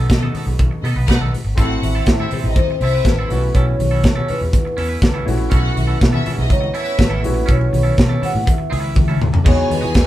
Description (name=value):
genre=disco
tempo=122 BPM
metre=4/4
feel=straight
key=unclear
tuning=A4 = 439 Hz
part: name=clear grand piano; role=accompaniment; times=0.0-10.1 s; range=G#3 to A4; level=-28 LUFS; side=left 3 dB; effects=none
part: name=twangy electric guitar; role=accompaniment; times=0.0-10.0 s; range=G#3 to B4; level=-29 LUFS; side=right 4 dB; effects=none
part: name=mellow French horn section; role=sustained chords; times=0.0-10.1 s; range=E3 to G#4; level=-32 LUFS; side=right 2 dB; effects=none
part: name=picked electric bass with an envelope filter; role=bass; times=0.0-10.1 s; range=G#1 to E3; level=-19 LUFS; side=equal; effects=none
part: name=clear studio string section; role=second line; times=0.1-10.1 s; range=B3 to G#5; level=-27 LUFS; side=equal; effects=none
part: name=modern studio drum kit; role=drums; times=0.1-10.1 s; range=crash cymbal, hi-hat, kick drum, snare drum, toms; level=-17 LUFS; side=equal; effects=none
part: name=congas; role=percussion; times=0.1-10.1 s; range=none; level=-26 LUFS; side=left 3 dB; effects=none
part: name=vibraphone with soft mallets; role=melody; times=1.8-10.1 s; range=B4 to F#5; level=-23 LUFS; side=equal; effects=none
room=moderate studio reverb, RT60 0.5 s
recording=band playing live in one room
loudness=-14 LUFS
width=side -14 dB against mid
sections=0.0-1.6 A section; 1.6-9.5 B section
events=drum fill 9.0-9.5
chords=0.0 B7; 1.6 Am; 3.3 B9sus4; 9.5 Emaj9